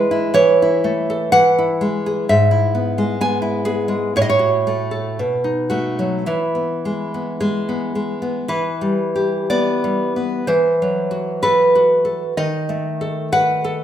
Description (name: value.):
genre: romantic piece for solo classical guitar.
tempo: 52-66 BPM.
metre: 2/4.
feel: rubato.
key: E major, E minor from 8.5 s.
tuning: A4 = 439 Hz.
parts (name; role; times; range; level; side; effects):
nylon-string guitar; solo; 0.0-13.8 s; G#2 to G#5; -16 LUFS; equal; none.
room: moderate recital hall reverb, RT60 1.4 s.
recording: recorded in a church or concert hall.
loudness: -16 LUFS.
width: side -10 dB against mid.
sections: 0.0-8.5 A section; 8.5-13.8 B section.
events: none.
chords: 0.3 A/E; 1.3 E; 2.3 E/G#; 4.2 F#m/A; 5.2 B7; 6.3 E; 8.5 Em; 10.5 F#m7b5/E; 12.4 B7/D#.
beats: | 0.32 1.34 | 2.28 3.20 | 4.17 5.20 | 6.29 7.41 | 8.49 9.49 | 10.47 11.43 | 12.36 13.31.